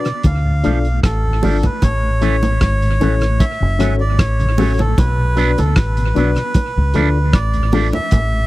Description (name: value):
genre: roots reggae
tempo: 76 BPM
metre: 4/4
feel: straight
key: unclear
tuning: A4 = 437 Hz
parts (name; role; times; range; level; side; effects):
- melodica; melody; 0.0-8.5 s; A4 to F5; -22 LUFS; right 1 dB; dub echo
- reed electric piano; stabs; 0.0-8.0 s; C#4 to D5; -20 LUFS; left 6 dB; overdrive, fast tremolo, tube saturation
- cloth-damped thuddy drum kit; drums; 0.0-8.3 s; hi-hat, kick drum, rim click; -17 LUFS; equal; tape echo
- mellow tonewheel organ; accompaniment; 0.1-8.4 s; D2 to D4; -24 LUFS; left 2 dB; chorus vibrato, slow rotary speaker, tape echo
- bongos; percussion; 0.2-8.3 s; none; -23 LUFS; right 3 dB; none
- deep dub fingered electric bass; bass; 0.3-8.5 s; F#1 to D2; -16 LUFS; equal; none
- electric guitar with an envelope filter; accompaniment; 0.6-7.9 s; E3 to D4; -26 LUFS; right 6 dB; dub echo
room: little or no reverb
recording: dry, close 1970s-style studio recording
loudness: -13 LUFS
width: side -17 dB against mid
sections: 0.0-1.8 A section; 1.8-8.5 B section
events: none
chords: 0.2 Dm; 1.8 A; 3.4 F#m; 5.0 Bm; 6.6 Dm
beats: 0.25 1.03 | 1.82 2.61 3.40 4.19 | 4.98 5.76 6.55 7.34 | 8.13